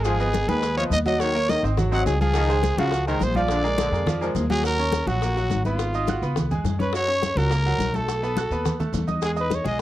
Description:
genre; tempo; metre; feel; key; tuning
latin, salsa; 209 BPM; 4/4; straight; Eb minor; A4 = 438 Hz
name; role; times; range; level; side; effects
growling trumpet; melody; 0.0-9.8 s; F4 to Gb5; -25 LUFS; equal; none
bright trombone section; second line; 0.0-4.4 s; Db3 to Gb3; -28 LUFS; left 3 dB; none
bright grand piano; accompaniment; 0.0-9.8 s; F3 to Gb6; -28 LUFS; right 3 dB; none
upright bass; bass; 0.0-9.8 s; Ab1 to Gb2; -25 LUFS; equal; none
maracas; percussion; 0.0-9.8 s; none; -42 LUFS; right 15 dB; none
bongos; percussion; 0.1-9.8 s; none; -33 LUFS; left 10 dB; none
congas; percussion; 0.1-9.8 s; none; -29 LUFS; left 2 dB; none
room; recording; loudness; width
little or no reverb; dry, close 1970s-style studio recording; -20 LUFS; side -14 dB against mid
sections
0.0-4.6 A section; 4.6-9.8 B section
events
none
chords
0.1 Abm7; 1.2 Ebm7; 1.8 Ab6; 2.4 Dbmaj7; 3.5 Bb7; 4.6 Ebm7; 5.8 Abm7; 6.4 Db7; 6.9 Gb; 8.1 B7; 9.2 Emaj7

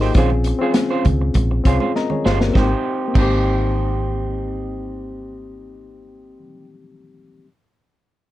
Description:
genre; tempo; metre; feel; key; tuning
lush 1970s-style soul; 100 BPM; 4/4; straight; Ab major; A4 = 439 Hz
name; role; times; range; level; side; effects
reed electric piano; accompaniment; 0.0-7.5 s; Bb3 to Bb5; -23 LUFS; left 4 dB; none
electric guitar through a small old amp; riff; 0.0-6.7 s; Ab3 to C5; -25 LUFS; right 5 dB; vibrato effect
vintage muted fingered electric bass; bass; 0.0-6.4 s; G1 to Db2; -21 LUFS; equal; none
vintage drum kit; drums; 0.0-3.3 s; crash cymbal, hi-hat, kick drum, snare drum; -20 LUFS; equal; none
congas; percussion; 0.2-3.3 s; none; -30 LUFS; right 5 dB; none
room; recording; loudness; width
light reverb; dark, warm production; -16 LUFS; side -15 dB against mid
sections
0.0-2.6 A section; 2.6-5.0 B section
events
reed electric piano fill 1.7-2.6; drum fill 2.0-2.6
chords
0.2 Bbm9; 2.6 Abmaj7

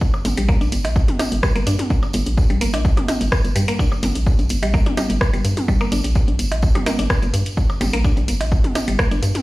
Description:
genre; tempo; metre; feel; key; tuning
minimal techno; 127 BPM; 4/4; straight; G minor; A4 = 439 Hz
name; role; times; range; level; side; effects
electronic kick drum; drums; 0.0-9.1 s; none; -18 LUFS; equal; none
tambourine; percussion; 0.0-9.4 s; none; -33 LUFS; right 2 dB; none
electronic percussion blips and toms; percussion; 0.1-9.4 s; none; -25 LUFS; equal; overdrive, ping-pong delay
hollow knocking FM bass; bass; 0.2-9.3 s; F1 to G2; -20 LUFS; equal; tube saturation, sidechain pumping
punchy analog drum machine; drums; 0.2-9.4 s; hi-hat, rim click; -26 LUFS; equal; none
mallet-like synth pluck; riff; 0.4-9.2 s; G3 to D4; -26 LUFS; equal; chorus, sidechain pumping, digital delay
room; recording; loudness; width
light reverb; played on a big sound system in a bare room, stone room reverb; -16 LUFS; side -19 dB against mid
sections
0.0-9.4 A section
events
none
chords
0.0 Gm

